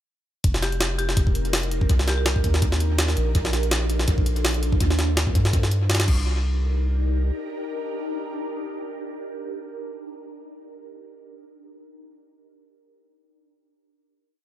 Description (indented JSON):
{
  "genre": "drum and bass, jungle",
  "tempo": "165 BPM",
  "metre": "4/4",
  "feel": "swing 55% on 16ths",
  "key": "C dorian",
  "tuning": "A4 = 440 Hz",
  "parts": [
    { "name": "ethereal airy pad", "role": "sustained chords", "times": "1.0-9.9 s", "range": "D4 to Bb4", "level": "-31 LUFS", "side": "right 1 dB", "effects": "ensemble chorus, built-in reverb, phaser" },
    { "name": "soft dub sub bass", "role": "bass", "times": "0.4-7.3 s", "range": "F1 to G2", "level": "-22 LUFS", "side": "equal", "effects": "none" },
    { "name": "jungle sampler-style drum kit", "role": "drums", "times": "0.4-6.2 s", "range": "crash cymbal, hi-hat, kick drum, snare drum", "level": "-23 LUFS", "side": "equal", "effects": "studio ambience, analog delay" },
    { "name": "marimba with medium hard mallets", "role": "melody", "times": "0.6-2.2 s", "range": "G4", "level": "-33 LUFS", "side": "left 3 dB", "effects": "dub echo" }
  ],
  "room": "little or no reverb",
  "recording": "echo-heavy mix",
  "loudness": "-21 LUFS",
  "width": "side -12 dB against mid",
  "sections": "0.4-6.3 drop; 6.3-9.2 final hit",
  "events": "drop 0.4-6.3",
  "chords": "0.4 F9sus4; 1.9 Cm7; 3.4 Bbmaj7; 4.8 Eb; 6.1 Cm7"
}